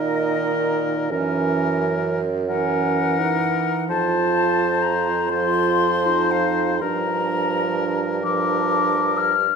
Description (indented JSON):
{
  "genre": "classical, slow romantic movement for wind quintet",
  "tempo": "42 BPM (dotted quarters)",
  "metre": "6/8",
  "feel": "rubato",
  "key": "unclear",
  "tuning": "A4 = 440 Hz",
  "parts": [
    { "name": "mellow hollow silver concert flute", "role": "melody", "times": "0.0-9.6 s", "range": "Eb5 to F6", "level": "-23 LUFS", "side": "left 7 dB", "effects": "none" },
    { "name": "warm oboe", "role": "second line", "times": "0.0-9.3 s", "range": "Bb4 to C5", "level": "-26 LUFS", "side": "left 3 dB", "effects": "none" },
    { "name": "clear French horn", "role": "accompaniment", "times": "0.0-9.3 s", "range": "Eb3 to F3", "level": "-27 LUFS", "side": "right 2 dB", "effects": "none" },
    { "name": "mellow clarinet", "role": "accompaniment", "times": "0.0-9.3 s", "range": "Db4 to F4", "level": "-26 LUFS", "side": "right 9 dB", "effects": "none" },
    { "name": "warm bassoon", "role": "bass", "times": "0.0-9.6 s", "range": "F2 to Bb2", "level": "-25 LUFS", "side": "right 4 dB", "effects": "none" }
  ],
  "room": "wet recital hall reverb, RT60 1.4 s",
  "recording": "none",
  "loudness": "-18 LUFS",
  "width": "side -5 dB against mid",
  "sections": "0.0-9.6 A section",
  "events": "none",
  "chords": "0.0 Eb5/Bb; 1.1 Gb7; 3.9 F; 6.8 Gm7"
}